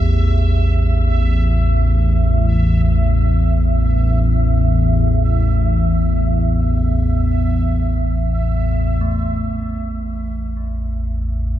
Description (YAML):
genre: ambient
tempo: free time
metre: none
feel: none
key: unclear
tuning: A4 = 444 Hz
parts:
  - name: gamelan-type bronze metallophone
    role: arpeggios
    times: 0.0-11.6 s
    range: A3 to G4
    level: -32 LUFS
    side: right 1 dB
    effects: ping-pong delay
  - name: deep rumbling drone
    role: drone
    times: 0.0-11.6 s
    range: A1 to E2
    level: -15 LUFS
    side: equal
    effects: built-in reverb, lush chorus
  - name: bubbling stepped-filter texture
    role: texture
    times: 0.0-9.0 s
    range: E5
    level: -27 LUFS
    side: right 5 dB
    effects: chorus, built-in reverb
room: wet cathedral reverb, RT60 5.8 s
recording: dark, warm production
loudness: -14 LUFS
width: side -12 dB against mid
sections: 0.0-9.0 A section; 9.0-11.6 B section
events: none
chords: 0.0 A5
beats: free time